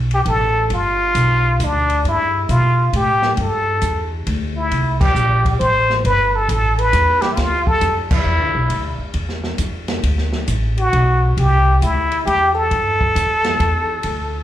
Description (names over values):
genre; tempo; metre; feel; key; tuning
jazz, small-group swing and bop; 135 BPM; 3/4; swing 66% on 8ths; G mixolydian; A4 = 439 Hz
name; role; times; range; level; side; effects
upright bass; bass; 0.0-14.4 s; G1 to B2; -19 LUFS; equal; none
trumpet with plunger mute; melody; 0.1-14.4 s; D4 to C5; -17 LUFS; equal; slapback echo
open jazz drum kit; drums; 0.1-14.2 s; crash cymbal, hi-hat, kick drum, ride cymbal, snare drum; -24 LUFS; equal; none
room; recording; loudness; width
light reverb; live gig heard through the venue's PA, club reverb; -15 LUFS; side -12 dB against mid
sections
0.0-14.4 A section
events
band accent 4.9, 8.0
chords
0.0 G13; 4.7 C5; 6.0 G7sus2; 10.0 D6; 11.4 Cadd9; 12.7 G7sus2